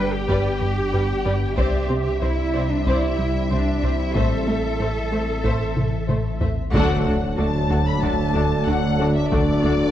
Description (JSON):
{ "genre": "cinematic, hybrid orchestral and electronic film score", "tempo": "93 BPM", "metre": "4/4", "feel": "straight", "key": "unclear", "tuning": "A4 = 440 Hz", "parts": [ { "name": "warm symphonic violin section", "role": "melody", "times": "0.0-9.9 s", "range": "D5 to B5", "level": "-30 LUFS", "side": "left 5 dB", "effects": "none" }, { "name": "warm symphonic violin section", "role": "second line", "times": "0.0-9.7 s", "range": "F#4 to E5", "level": "-31 LUFS", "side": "left 3 dB", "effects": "none" }, { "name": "warm symphonic viola section", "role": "accompaniment", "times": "0.0-9.7 s", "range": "G3 to D4", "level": "-30 LUFS", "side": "equal", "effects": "none" }, { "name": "deep dark ambient pad", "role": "sustained chords", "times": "0.0-9.9 s", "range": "E3 to E5", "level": "-29 LUFS", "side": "equal", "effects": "chorus, built-in reverb" }, { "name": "plucky analog bass", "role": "riff", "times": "0.0-9.8 s", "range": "C2 to A3", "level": "-26 LUFS", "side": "right 1 dB", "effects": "none" }, { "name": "rich symphonic cello section", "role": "bass", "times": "0.0-9.9 s", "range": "D2 to B4", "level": "-27 LUFS", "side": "right 2 dB", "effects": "none" }, { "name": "warm sub bass", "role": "bass", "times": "0.0-9.9 s", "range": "D1 to C2", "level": "-28 LUFS", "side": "equal", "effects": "none" }, { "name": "taiko ensemble", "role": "drums", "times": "0.3-9.9 s", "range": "none", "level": "-26 LUFS", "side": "equal", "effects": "none" }, { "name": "mellow French horn section", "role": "sustained chords", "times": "6.7-9.9 s", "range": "A3 to D4", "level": "-27 LUFS", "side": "left 4 dB", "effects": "none" }, { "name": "warm trombone section", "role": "sustained chords", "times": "6.7-9.9 s", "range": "D3 to F#3", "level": "-28 LUFS", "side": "right 2 dB", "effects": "none" }, { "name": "mellow tuba", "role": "bass", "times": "6.7-9.9 s", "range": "D2", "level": "-26 LUFS", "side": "right 2 dB", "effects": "none" }, { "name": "warm symphonic double bass section", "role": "bass", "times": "6.7-9.9 s", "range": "D2", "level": "-27 LUFS", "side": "right 2 dB", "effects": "none" }, { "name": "impact", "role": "sound effects", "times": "6.7-9.3 s", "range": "none", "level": "-31 LUFS", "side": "equal", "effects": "none" } ], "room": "moderate scoring stage reverb, RT60 1.7 s", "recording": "worn, warbling old tape, cassette tape, warbly pitch drift", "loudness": "-19 LUFS", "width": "side -11 dB against mid", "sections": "0.0-6.7 A section; 6.7-9.9 B section", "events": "drum fill 5.8-6.7; band accent 6.7-7.4; impact 6.7-9.3", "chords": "0.0 G; 1.6 Cadd9; 4.2 Am; 6.7 D", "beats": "0.28 0.93 | 1.57 2.22 2.87 3.51 | 4.16 4.80 5.45 6.09 | 6.74 7.38 8.03 8.67 | 9.32" }